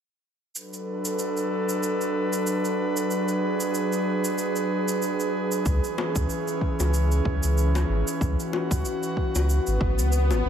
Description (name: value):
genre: sunset chillout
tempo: 94 BPM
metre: 4/4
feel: swing 56% on 16ths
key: B dorian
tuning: A4 = 445 Hz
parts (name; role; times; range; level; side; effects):
- airy breathy pad; sustained chords; 0.6-10.5 s; E3 to B4; -25 LUFS; right 1 dB; chorus
- cabasa; drums; 0.6-10.4 s; none; -34 LUFS; right 3 dB; overdrive
- warm sub bass; bass; 5.7-10.5 s; G#1 to C#2; -22 LUFS; equal; tube saturation
- electronic kick drum; drums; 5.7-10.0 s; none; -28 LUFS; equal; overdrive
- bongos; percussion; 6.0-10.4 s; none; -33 LUFS; left 6 dB; none
- swell; sound effects; 9.7-10.5 s; none; -29 LUFS; left 4 dB; none
room: light reverb, digital ambience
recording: none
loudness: -23 LUFS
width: side -8 dB against mid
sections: 0.6-10.5 A section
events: swell 9.7-10.5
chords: 0.6 Bm7; 5.7 C#m7